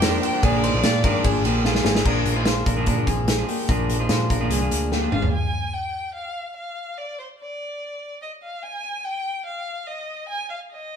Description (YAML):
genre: jangly indie pop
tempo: 146 BPM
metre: 4/4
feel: straight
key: unclear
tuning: A4 = 436 Hz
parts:
  - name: warm violin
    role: melody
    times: 0.0-1.6, 5.1-11.0 s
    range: C5 to Ab5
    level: -28 LUFS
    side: left 1 dB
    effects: none
  - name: warm studio violin section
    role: second line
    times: 0.0-2.1 s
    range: F4 to C5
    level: -35 LUFS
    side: left 1 dB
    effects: none
  - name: electric guitar at the edge of break-up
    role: accompaniment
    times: 0.0-5.3 s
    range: Bb2 to Ab4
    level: -26 LUFS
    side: right 4 dB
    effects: none
  - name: clean electric guitar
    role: arpeggios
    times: 0.0-5.3 s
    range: Ab3 to D5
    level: -26 LUFS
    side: left 4 dB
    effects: none
  - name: vintage muted picked electric bass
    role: bass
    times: 0.0-5.3 s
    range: Ab1 to Bb2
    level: -25 LUFS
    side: equal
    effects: none
  - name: loose indie drum kit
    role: drums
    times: 0.0-5.3 s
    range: crash cymbal, hi-hat, kick drum, ride cymbal, snare drum, toms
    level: -23 LUFS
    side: equal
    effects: none
room: moderate stone room reverb, RT60 1.3 s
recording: band playing live in one room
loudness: -20 LUFS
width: side -7 dB against mid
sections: 0.0-2.1 A section; 2.1-5.3 B section; 5.3-11.0 C section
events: drum fill 1.6-2.1, 4.9-5.3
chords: 0.4 Bb7; 5.3 N.C.